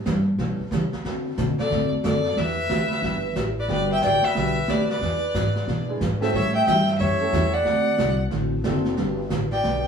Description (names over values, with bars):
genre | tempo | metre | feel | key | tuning
country, western swing | 182 BPM | 4/4 | swing 64% on 8ths | G major | A4 = 440 Hz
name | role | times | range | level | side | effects
upright bass | bass | 0.0-9.9 s | F#1 to D3 | -26 LUFS | equal | none
picked steel-string acoustic guitar | accompaniment | 0.1-9.9 s | D3 to A4 | -27 LUFS | right 2 dB | none
vintage brush drum kit | drums | 0.1-9.9 s | brushed snare drum, hi-hat, snare drum | -31 LUFS | equal | none
clear fiddle | melody | 1.6-9.8 s | D5 to G5 | -25 LUFS | left 2 dB | none
breathy clarinet | second line | 1.6-9.8 s | A4 to E5 | -26 LUFS | right 1 dB | none
clear upright piano | accompaniment | 3.7-9.0 s | G3 to A4 | -29 LUFS | right 1 dB | none
room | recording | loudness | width
wet studio reverb, RT60 0.8 s | band playing live in one room, studio reverb | -20 LUFS | side -6 dB against mid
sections
0.0-9.9 A section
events
none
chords
0.0 A7; 1.1 D7; 2.4 Em7; 3.7 Gmaj7; 5.0 E7; 6.3 A7; 7.7 D7; 9.0 Gmaj7